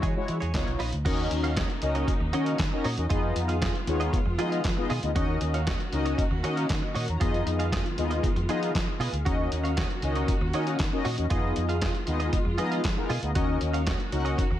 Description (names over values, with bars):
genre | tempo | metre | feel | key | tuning
early-eighties boogie funk | 117 BPM | 4/4 | straight | Eb minor | A4 = 439 Hz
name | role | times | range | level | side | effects
mellow synth brass | accompaniment | 0.0-14.4 s | G#3 to Bb5 | -30 LUFS | left 3 dB | chorus
warm studio string section | sustained chords | 0.0-14.6 s | Db3 to Gb4 | -36 LUFS | equal | none
direct-recorded clean electric guitar | riff | 0.0-14.5 s | F4 to F5 | -34 LUFS | right 5 dB | analog chorus
fingered electric bass with an envelope filter | bass | 0.0-14.6 s | Bb1 to F3 | -29 LUFS | equal | none
lo-fi sampler-style drum kit | drums | 0.0-14.5 s | crash cymbal, handclaps, hi-hat, kick drum, snare drum | -29 LUFS | equal | gated reverb
room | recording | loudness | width
digital ambience | none | -24 LUFS | side -12 dB against mid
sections
0.0-1.1 A section; 1.1-14.6 B section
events
none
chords
0.0 E69; 0.5 Db9; 1.1 Ebm7; 3.1 Fm7b5; 5.2 Ebm7; 7.2 Fm7b5; 9.3 Ebm7; 11.3 Fm7b5; 13.4 Ebm7